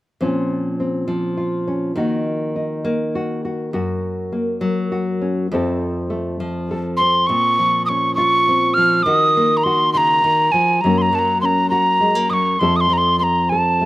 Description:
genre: acoustic folk duo or small band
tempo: 68 BPM (dotted quarters)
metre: 6/8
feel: straight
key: Bb minor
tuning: A4 = 440 Hz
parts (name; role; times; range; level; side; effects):
- nylon-string guitar; accompaniment; 0.2-13.9 s; F2 to A4; -20 LUFS; left 1 dB; none
- breathy mellow tin whistle; melody; 7.0-13.9 s; Ab5 to F6; -15 LUFS; equal; slapback echo
room: little or no reverb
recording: recorded outdoors, with no room sound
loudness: -16 LUFS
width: side -17 dB against mid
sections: 0.2-7.3 A section; 7.3-13.9 B section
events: none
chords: 0.2 Bbmadd9; 2.0 Ebm; 3.7 Gb; 5.5 F; 7.3 Bbmadd9; 9.1 Ebm; 10.8 Gb; 12.6 F

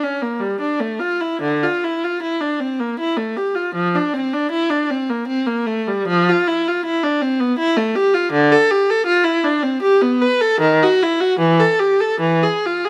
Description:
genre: classical, baroque-style suite movement for unaccompanied viola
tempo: 78 BPM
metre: 3/4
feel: uneven beats, rubato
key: D minor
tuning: A4 = 441 Hz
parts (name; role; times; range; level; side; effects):
- rich viola; solo; 0.0-12.9 s; D3 to B4; -18 LUFS; equal; none
room: light reverb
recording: none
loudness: -18 LUFS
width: mono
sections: 0.0-12.9 A section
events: none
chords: none

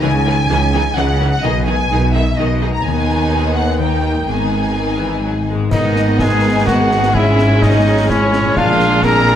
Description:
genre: cinematic, heroic adventure film score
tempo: 127 BPM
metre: 3/4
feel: straight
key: G# minor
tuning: A4 = 442 Hz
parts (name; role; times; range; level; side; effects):
- dark symphonic violin section; melody; 0.0-9.4 s; C#5 to A#5; -21 LUFS; left 2 dB; none
- rich symphonic violin section; second line; 0.0-9.4 s; C#4 to A#4; -25 LUFS; left 2 dB; none
- rich symphonic viola section; accompaniment; 0.0-9.4 s; D#3 to D#4; -22 LUFS; equal; none
- concert harp; arpeggios; 0.0-9.4 s; G#2 to D#5; -23 LUFS; left 7 dB; none
- rich symphonic cello section; bass; 0.0-9.4 s; D#2 to C#3; -21 LUFS; right 2 dB; none
- rich symphonic double bass section; bass; 0.0-9.4 s; G#1 to D#2; -19 LUFS; right 2 dB; none
- clear clarinet; second line; 5.7-9.4 s; G#3 to E4; -23 LUFS; equal; none
- concert flute; second line; 5.7-9.4 s; C#5 to A#5; -21 LUFS; equal; none
- dark French horn section; sustained chords; 5.7-9.4 s; B3 to G#4; -22 LUFS; left 1 dB; none
- mellow trumpet section; stabs; 5.7-9.4 s; C#4 to A#4; -18 LUFS; right 1 dB; none
- clash cymbals, concert bass drum and concert snare drum; drums; 5.7-9.4 s; none; -22 LUFS; equal; none
room: light reverb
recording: close, detailed microphones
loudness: -12 LUFS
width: side -10 dB against mid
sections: 0.0-5.7 A section; 5.7-9.4 B section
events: none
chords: 0.0 C#madd9; 1.4 G#m/B; 2.9 G#m/D#; 3.8 D#; 4.3 G#m; 7.2 C#m/G#; 8.6 A#7

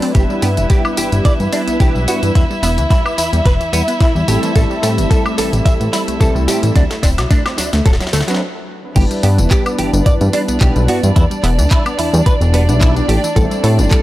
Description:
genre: nu-disco, nu disco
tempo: 109 BPM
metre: 4/4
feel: swing 54% on 16ths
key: G major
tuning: A4 = 440 Hz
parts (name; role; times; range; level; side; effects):
- mellow synth brass; accompaniment; 0.0-14.0 s; F#3 to D5; -21 LUFS; equal; chorus, tape echo
- warm chamber violin section; sustained chords; 0.0-14.0 s; D4 to E5; -22 LUFS; equal; sidechain pumping
- analog pluck; arpeggios; 0.0-14.0 s; E3 to A4; -24 LUFS; right 1 dB; chorus, cassette tape, sidechain pumping, analog delay
- pop drum kit; drums; 0.0-14.0 s; crash cymbal, handclaps, hi-hat, snare drum, tambourine, woodblock; -23 LUFS; left 1 dB; high-pass filter on hats, high-pass filter on perc, high-pass filter on snare, high-pass filter on cymbals
- direct-recorded clean electric guitar; riff; 0.1-14.0 s; A3 to E5; -22 LUFS; right 1 dB; ensemble chorus, low-pass filter
- fat analog bass; bass; 0.1-13.9 s; D1 to A2; -15 LUFS; equal; none
- electronic kick drum; drums; 0.1-14.0 s; none; -13 LUFS; equal; none
room: little or no reverb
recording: dry, gritty hardware recording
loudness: -12 LUFS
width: side -16 dB against mid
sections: 0.0-9.0 A section; 9.0-14.0 B section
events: build-up 0.0-9.0; drum fill 0.2-8.4; stop 8.4-9.0; drop 9.0-14.0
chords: 0.2 G6; 2.4 Em; 4.3 Am7; 6.8 D7; 9.0 G6; 11.2 Em7; 13.1 Am7

